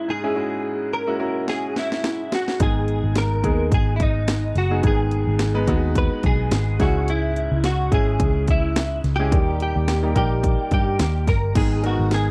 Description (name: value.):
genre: piano-driven pop.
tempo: 107 BPM.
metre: 4/4.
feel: swing 56% on 16ths.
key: G# minor.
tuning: A4 = 440 Hz.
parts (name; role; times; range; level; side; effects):
direct-recorded clean electric guitar; melody; 0.0-12.3 s; D#4 to B4; -28 LUFS; equal; ensemble chorus.
bright upright piano; accompaniment; 0.0-12.3 s; G#2 to B4; -28 LUFS; equal; none.
house drum kit; drums; 1.5-12.3 s; crash cymbal, hi-hat, kick drum, snare drum; -25 LUFS; equal; none.
vintage muted picked electric bass; bass; 2.6-12.3 s; F#1 to G2; -24 LUFS; equal; none.
room: light reverb.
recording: dry, close 1970s-style studio recording.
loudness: -21 LUFS.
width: mono.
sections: 0.0-11.6 A section.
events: drum fill 1.5-2.6.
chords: 0.0 C#m; 2.6 G#m; 6.8 C#m; 9.3 D#; 11.6 G#m.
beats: | 0.37 0.93 1.49 2.04 | 2.60 3.16 3.72 4.28 | 4.84 5.40 5.96 6.52 | 7.08 7.64 8.20 8.76 | 9.31 9.88 10.43 10.99 | 11.55 12.11.